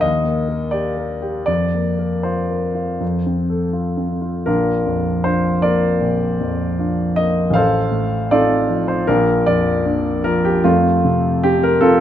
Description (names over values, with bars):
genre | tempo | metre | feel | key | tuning
classical, romantic character piece for solo piano | 79 BPM | 4/4 | uneven beats, rubato | Bb major | A4 = 441 Hz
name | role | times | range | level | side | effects
warm grand piano | solo | 0.0-12.0 s | A1 to F5 | -15 LUFS | equal | none
room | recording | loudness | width
moderate recital hall reverb, RT60 1.7 s | close, detailed microphones | -16 LUFS | side -10 dB against mid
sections
0.0-4.5 A section; 4.5-12.0 B section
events
none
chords
0.0 Eb; 1.5 Fsus4; 3.0 F; 4.5 Bb; 7.5 F7/A; 9.1 Bb; 10.6 F